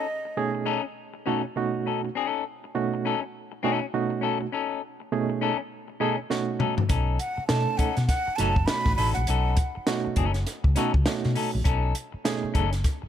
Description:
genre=funk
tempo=101 BPM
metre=4/4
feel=swing 60% on 16ths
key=unclear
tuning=A4 = 440 Hz
part: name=breathy jazz flute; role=melody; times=0.0-0.5, 7.2-10.0 s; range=D#5 to B5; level=-30 LUFS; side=right 2 dB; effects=none
part: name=semi-hollow electric guitar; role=accompaniment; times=0.0-13.1 s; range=C#4 to A4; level=-30 LUFS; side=left 10 dB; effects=none
part: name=barky reed electric piano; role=stabs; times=0.4-12.6 s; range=B2 to A4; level=-29 LUFS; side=right 6 dB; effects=overdrive, fast tremolo
part: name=compact cocktail drum kit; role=drums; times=6.3-13.0 s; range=hi-hat, kick drum, snare drum, toms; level=-26 LUFS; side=equal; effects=none
part: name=hollow-body short-scale fingered electric bass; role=bass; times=6.9-13.1 s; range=F#1 to B2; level=-26 LUFS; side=equal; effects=none
room=little or no reverb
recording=none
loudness=-24 LUFS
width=side -10 dB against mid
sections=0.0-13.1 A section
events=drum fill 6.3-6.9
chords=0.0 B9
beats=0.37 0.96 1.56 | 2.15 2.75 3.34 3.93 | 4.53 5.12 5.71 6.31 | 6.90 7.50 8.09 8.68 | 9.28 9.87 10.47 11.06 | 11.65 12.25 12.84

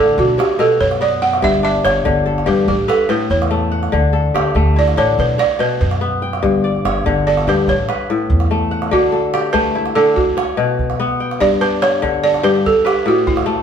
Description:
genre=west african traditional, West African string and xylophone music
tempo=96 BPM (dotted quarters)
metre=12/8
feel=straight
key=D major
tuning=A4 = 440 Hz
part: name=balafon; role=melody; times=0.0-13.6 s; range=E4 to F#5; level=-16 LUFS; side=right 3 dB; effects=none
part: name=kora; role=arpeggios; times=0.0-13.6 s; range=G2 to G5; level=-17 LUFS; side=left 4 dB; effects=none
part: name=upright bass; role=bass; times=0.0-8.9 s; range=G1 to F#2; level=-19 LUFS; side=equal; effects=none
part: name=calabash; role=percussion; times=0.1-13.5 s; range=none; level=-24 LUFS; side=right 4 dB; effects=none
room=wet stone room reverb, RT60 1.2 s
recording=band playing live in one room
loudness=-13 LUFS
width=side -8 dB against mid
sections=0.0-8.9 A section; 8.9-13.6 B section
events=balafon solo 8.9-13.6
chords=0.2 Bm; 1.4 G5; 2.7 A; 3.9 D; 5.2 Bm; 6.4 G5; 7.7 A; 8.9 D; 10.2 Bm; 11.4 G5; 12.6 A5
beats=0.17 0.80 | 1.43 2.05 2.68 3.31 | 3.93 4.56 5.18 5.81 | 6.43 7.05 7.68 8.30 | 8.92 9.54 10.16 10.79 | 11.40 12.03 12.64 13.26

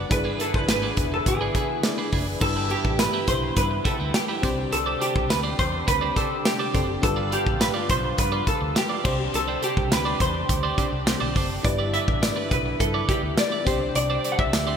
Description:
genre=1980s-style pop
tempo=104 BPM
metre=4/4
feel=straight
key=G major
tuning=A4 = 439 Hz
part: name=FM electric piano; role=accompaniment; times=0.0-14.8 s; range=G2 to D5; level=-31 LUFS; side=left 2 dB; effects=chorus
part: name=lush unison pad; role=sustained chords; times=0.0-14.8 s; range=C3 to G#4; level=-34 LUFS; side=equal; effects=chorus
part: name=twelve-string electric guitar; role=riff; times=0.0-14.8 s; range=D4 to D5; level=-31 LUFS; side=right 5 dB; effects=wide subtle chorus
part: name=vintage muted fingered electric bass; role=bass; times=0.0-14.7 s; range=E1 to G2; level=-30 LUFS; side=equal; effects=none
part: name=vintage hollow-body jazz guitar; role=melody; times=0.1-14.8 s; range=G4 to F#5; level=-26 LUFS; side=equal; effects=lush chorus, digital delay
part: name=modern studio drum kit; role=drums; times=0.1-14.7 s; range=crash cymbal, hi-hat, kick drum, snare drum, tambourine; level=-25 LUFS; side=equal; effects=gated reverb
part: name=funky polysynth comp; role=stabs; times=10.8-11.3 s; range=D3 to G4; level=-34 LUFS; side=equal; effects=chorus
room=moderate lush hall reverb, RT60 2.4 s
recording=bright 1980s-style digital production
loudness=-21 LUFS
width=side -7 dB against mid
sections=0.0-2.4 A section; 2.4-14.8 B section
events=band accent 9.3-11.6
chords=0.1 E7; 2.4 G6; 4.4 Csus2; 7.0 G7; 9.0 Csus2; 11.6 G6; 13.7 Csus2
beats=| 0.11 0.68 1.26 1.84 | 2.42 2.99 3.57 4.14 | 4.72 5.30 5.88 6.45 | 7.03 7.61 8.18 8.76 | 9.34 9.91 10.49 11.07 | 11.64 12.22 12.80 13.38 | 13.95 14.53

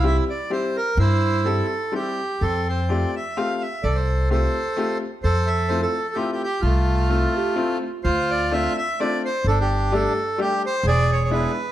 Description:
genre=musette waltz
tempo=128 BPM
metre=3/4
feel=swing 53% on 8ths, rubato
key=F major, D minor from 8.0 s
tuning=A4 = 441 Hz
part: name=accordion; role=melody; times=0.0-11.7 s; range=A3 to F5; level=-23 LUFS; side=right 2 dB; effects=slapback echo
part: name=bright upright piano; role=accompaniment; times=0.0-11.5 s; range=G3 to G4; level=-26 LUFS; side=left 4 dB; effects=none
part: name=upright bass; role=bass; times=0.0-11.4 s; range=E1 to G2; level=-21 LUFS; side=equal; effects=none
part: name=dark clarinet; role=second line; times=7.1-8.0 s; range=F4 to A4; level=-29 LUFS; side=right 3 dB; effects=none
room=light reverb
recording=close, detailed microphones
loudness=-20 LUFS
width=side -12 dB against mid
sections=0.0-8.0 A section; 8.0-11.7 B section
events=none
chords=0.0 C; 2.4 Fadd9; 5.2 Fmaj7; 8.0 Dm7; 9.4 Gsus2; 10.8 E7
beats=0.03 0.50 | 0.97 1.45 1.92 | 2.41 2.89 3.36 | 3.84 4.31 4.77 | 5.24 5.70 6.16 | 6.63 7.10 7.57 | 8.05 8.52 8.99 | 9.45 9.91 10.37 | 10.83 11.29

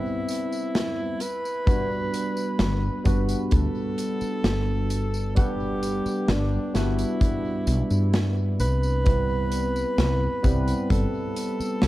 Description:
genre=vaporwave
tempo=65 BPM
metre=4/4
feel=straight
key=G major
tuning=A4 = 440 Hz
part: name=breathy alto saxophone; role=melody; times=0.0-11.9 s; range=D4 to B4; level=-30 LUFS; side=equal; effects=tape echo
part: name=tine electric piano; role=accompaniment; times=0.0-11.9 s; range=G3 to F#5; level=-28 LUFS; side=equal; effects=lush chorus, tape echo
part: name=big rock drum kit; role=drums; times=0.3-11.9 s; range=hi-hat, snare drum, tambourine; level=-29 LUFS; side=equal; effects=none
part: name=kick drum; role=drums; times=1.7-11.1 s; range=none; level=-24 LUFS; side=equal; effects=none
part: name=woody fretless electric bass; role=bass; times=2.6-11.9 s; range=G1 to G2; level=-24 LUFS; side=equal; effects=none
room=light reverb, studio reverb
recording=echo-heavy mix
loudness=-22 LUFS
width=side -16 dB against mid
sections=0.0-11.9 A section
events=none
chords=0.0 Cmaj7; 1.2 Gmaj7; 9.1 Cmaj7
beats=0.75 | 1.67 2.60 3.52 4.44 | 5.37 6.29 7.21 8.14 | 9.06 9.98 10.90 11.83

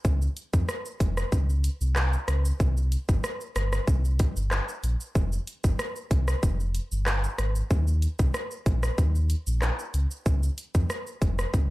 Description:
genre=dancehall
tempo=94 BPM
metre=4/4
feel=straight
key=F minor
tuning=A4 = 440 Hz
part: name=sub bass with octave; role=bass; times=0.0-11.7 s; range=F1 to F2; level=-25 LUFS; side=equal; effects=none
part: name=island pop drum kit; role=drums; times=0.0-11.7 s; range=handclaps, hi-hat, kick drum, rim click, shaker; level=-27 LUFS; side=equal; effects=none
room=little or no reverb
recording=dark, warm production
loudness=-24 LUFS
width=side -19 dB against mid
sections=0.0-11.7 A section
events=none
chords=none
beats=| 0.05 0.69 1.32 1.96 | 2.60 3.24 3.88 4.52 | 5.15 5.79 6.43 7.07 | 7.71 8.35 8.98 9.62 | 10.26 10.90 11.54

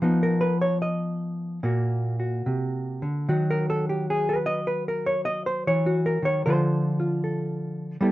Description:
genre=solo jazz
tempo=72-79 BPM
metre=4/4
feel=swing 68% on 8ths, rubato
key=unclear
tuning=A4 = 437 Hz
part: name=hollow-body jazz guitar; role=solo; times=0.0-8.1 s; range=A#2 to D#5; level=-23 LUFS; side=equal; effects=none
room=moderate club reverb, RT60 0.5 s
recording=dark, warm production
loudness=-23 LUFS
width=side -16 dB against mid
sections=0.0-8.1 A section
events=hollow-body jazz guitar solo 0.0-8.1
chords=0.0 Bmaj7#11/E#; 1.6 A#; 3.3 D#m; 6.5 Dm7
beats=| 0.03 0.82 1.63 2.46 | 3.29 4.09 4.88 5.67 | 6.46 7.22 7.99

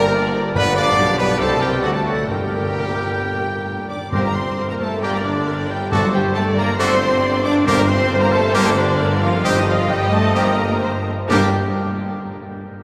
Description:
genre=classical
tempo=123-145 BPM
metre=4/4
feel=rubato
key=G minor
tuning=A4 = 439 Hz
part: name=warm symphonic violin section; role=melody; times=0.0-11.6 s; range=D5 to D6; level=-30 LUFS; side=equal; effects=none
part: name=mellow cor anglais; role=second line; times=0.0-11.5 s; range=D4 to D5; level=-30 LUFS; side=equal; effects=none
part: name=mellow hollow silver concert flute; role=second line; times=0.0-11.5 s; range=A4 to Eb6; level=-31 LUFS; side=equal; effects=none
part: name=rich symphonic violin section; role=second line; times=0.0-11.6 s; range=D4 to D5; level=-30 LUFS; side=equal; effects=none
part: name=rich symphonic viola section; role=accompaniment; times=0.0-11.5 s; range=Bb3 to Eb5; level=-28 LUFS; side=equal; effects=none
part: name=clear trombone section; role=sustained chords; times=0.0-11.5 s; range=D3 to C4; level=-33 LUFS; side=equal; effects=none
part: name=mellow French horn section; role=sustained chords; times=0.0-11.5 s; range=D3 to D4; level=-29 LUFS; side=equal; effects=none
part: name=bright trumpet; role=stabs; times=0.0-11.5 s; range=F#4 to D5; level=-30 LUFS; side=equal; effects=none
part: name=rich symphonic cello section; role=bass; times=0.0-11.6 s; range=Eb2 to D4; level=-28 LUFS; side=equal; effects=none
part: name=warm symphonic double bass section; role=bass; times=0.0-11.5 s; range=G1 to G2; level=-28 LUFS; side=equal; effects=none
part: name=warm tuba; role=bass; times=0.0-11.5 s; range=G1 to D2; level=-28 LUFS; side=equal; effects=none
part: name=timpani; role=percussion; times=0.5-11.5 s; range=G2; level=-30 LUFS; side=equal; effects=none
part: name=warm clarinet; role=second line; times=4.1-11.5 s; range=A4 to C5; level=-32 LUFS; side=equal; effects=none
room=wet cathedral reverb, RT60 5.3 s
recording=recorded in a church or concert hall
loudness=-18 LUFS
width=mono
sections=0.0-4.1 A section; 4.1-11.3 B section; 11.3-12.8 C section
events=none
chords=0.0 Gm; 0.6 G7; 1.4 Cm; 1.8 D; 2.3 Gm; 5.9 D7/G; 7.7 Gm; 9.4 Cm/G; 11.3 Gm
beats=0.14 | 0.56 0.98 1.40 1.83 | 2.29 2.75 3.21 3.66 | 4.12 4.58 5.03 5.47 | 5.92 6.36 6.79 7.23 | 7.67 8.11 8.55 8.99 | 9.45 9.89 10.35 10.82 | 11.30

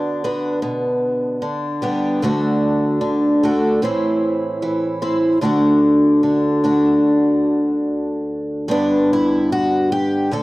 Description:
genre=folk, solo fingerstyle acoustic guitar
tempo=75 BPM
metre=4/4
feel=straight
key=G major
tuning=A4 = 440 Hz
part: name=picked twelve-string acoustic guitar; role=solo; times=0.0-10.4 s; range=D2 to A4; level=-16 LUFS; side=equal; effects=none
room=light reverb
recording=dry, close 1970s-style studio recording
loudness=-16 LUFS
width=side -20 dB against mid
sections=0.0-8.7 A section; 8.7-10.4 B section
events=none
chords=0.0 Bm; 0.6 G/B; 2.2 D; 3.8 Am; 5.4 D; 8.7 G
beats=0.63 1.43 | 2.23 3.02 3.82 4.62 | 5.43 6.23 7.03 7.86 | 8.68 9.50 10.31

